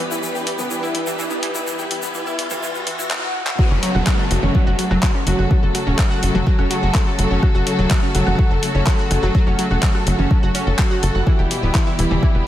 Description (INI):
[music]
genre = melodic techno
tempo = 125 BPM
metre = 4/4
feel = straight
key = F# phrygian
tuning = A4 = 440 Hz
[part]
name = rich studio string section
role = sustained chords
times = 0.0-12.5 s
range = B2 to B4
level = -24 LUFS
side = left 1 dB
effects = sidechain pumping
[part]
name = analog pluck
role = arpeggios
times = 0.0-12.4 s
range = E3 to F#6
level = -23 LUFS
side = equal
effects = chorus, vintage 12-bit sampler grit, sidechain pumping, tape echo
[part]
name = riser, swell and downlifter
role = sound effects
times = 0.1-7.4 s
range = none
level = -29 LUFS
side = equal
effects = none
[part]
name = tube shaker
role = percussion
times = 0.1-3.1 s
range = none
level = -32 LUFS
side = left 3 dB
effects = none
[part]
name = deep house drum kit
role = drums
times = 0.5-12.2 s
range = handclaps, hi-hat, rim click, toms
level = -25 LUFS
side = left 1 dB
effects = none
[part]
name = electronic kick drum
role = drums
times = 3.6-12.3 s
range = none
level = -17 LUFS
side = equal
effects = overdrive
[part]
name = tight sequencer bass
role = bass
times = 3.7-12.4 s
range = D1 to F#1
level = -19 LUFS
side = equal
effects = sidechain pumping
[sound]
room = light reverb, digital ambience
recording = high-pass filter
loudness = -16 LUFS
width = side -12 dB against mid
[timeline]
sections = 0.0-3.6 A section; 3.6-12.5 B section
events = build-up 0.0-3.6; riser 0.1-3.1; swell 2.6-3.6; drum fill 3.1-3.6; drop 3.6-12.5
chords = 0.0 Em; 3.6 F#m; 11.3 Em